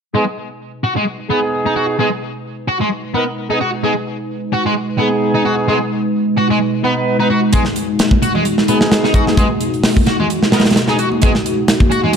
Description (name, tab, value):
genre	breakbeat, breaks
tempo	130 BPM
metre	4/4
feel	swing 55% on 16ths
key	G# minor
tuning	A4 = 445 Hz
part	warbly tape-like pad	sustained chords	0.1-12.2 s	B2 to B4	-19 LUFS	equal	chorus, built-in reverb, sidechain pumping
part	sludgy distorted guitar	riff	0.1-12.1 s	G#3 to F#4	-19 LUFS	left 1 dB	overdrive, tube saturation, low-pass filter, ping-pong delay
part	warm horn section	stabs	0.1-11.3 s	B3 to B4	-20 LUFS	right 2 dB	low-pass filter, ping-pong delay
part	tight metal drum kit	drums	7.5-12.2 s	hi-hat, kick drum, snare drum	-14 LUFS	equal	none
part	congas	percussion	8.1-12.1 s	none	-23 LUFS	right 3 dB	none
room	light reverb, small room ambience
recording	dark, warm production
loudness	-13 LUFS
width	side -7 dB against mid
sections	0.1-12.2 A section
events	filter sweep on ambient pad 0.1-12.2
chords	0.1 G#m